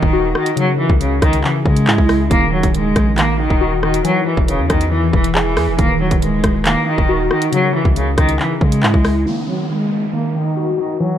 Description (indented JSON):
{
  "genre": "hip hop, drill",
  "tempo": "138 BPM",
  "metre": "4/4",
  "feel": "half-time",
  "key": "Eb phrygian",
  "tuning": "A4 = 440 Hz",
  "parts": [
    { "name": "bright cello", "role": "melody", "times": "0.0-11.2 s", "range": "Db3 to Bb3", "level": "-18 LUFS", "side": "equal", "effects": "low-pass filter" },
    { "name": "glassy wavetable pluck", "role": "accompaniment", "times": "0.0-11.2 s", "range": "Db3 to G#4", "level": "-20 LUFS", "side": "left 1 dB", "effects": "chorus, low-pass filter" },
    { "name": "ethereal airy pad", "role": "sustained chords", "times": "0.0-9.2 s", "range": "Db3 to B4", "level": "-26 LUFS", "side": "equal", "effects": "ensemble chorus, built-in reverb, tremolo" },
    { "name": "long sustained 808-style bass", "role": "bass", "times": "0.0-9.3 s", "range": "Eb1 to Db3", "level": "-19 LUFS", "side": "equal", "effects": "none" },
    { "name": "drill drum kit", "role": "drums", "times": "0.0-9.1 s", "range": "handclaps, hi-hat, kick drum, rim click", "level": "-17 LUFS", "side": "equal", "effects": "none" },
    { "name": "downlifter", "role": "sound effects", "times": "9.3-11.2 s", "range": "none", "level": "-29 LUFS", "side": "left 1 dB", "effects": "none" }
  ],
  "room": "little or no reverb",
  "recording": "none",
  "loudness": "-13 LUFS",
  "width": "side -10 dB against mid",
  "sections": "0.0-9.3 A section; 9.3-11.2 B section",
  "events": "filter sweep 9.3-11.2",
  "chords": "0.0 Ebm; 0.6 Dbm; 2.3 Ebm; 4.0 E; 5.8 Ebm; 7.5 Dbm; 9.3 Ebm"
}